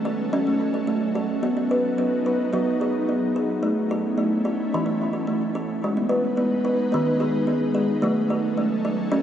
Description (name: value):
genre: world meditative, meditative tuned percussion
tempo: 109 BPM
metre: 4/4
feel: straight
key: unclear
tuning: A4 = 440 Hz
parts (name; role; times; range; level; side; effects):
- ethereal airy pad; sustained chords; 0.0-9.2 s; F#3 to B4; -27 LUFS; left 3 dB; ensemble chorus, built-in reverb
- kalimba; arpeggios; 0.0-9.2 s; D#3 to B4; -22 LUFS; right 1 dB; diffuse ambient delay
room: wet church reverb, RT60 4.0 s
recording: none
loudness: -21 LUFS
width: side -10 dB against mid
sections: 0.0-9.2 A section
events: none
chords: 0.0 F#m; 1.4 B; 3.6 A; 5.8 G#m; 8.0 F#m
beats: 0.33 0.88 | 1.43 1.98 2.53 3.08 | 3.63 4.18 4.73 5.28 | 5.83 6.38 6.93 7.47 | 8.03 8.57 9.12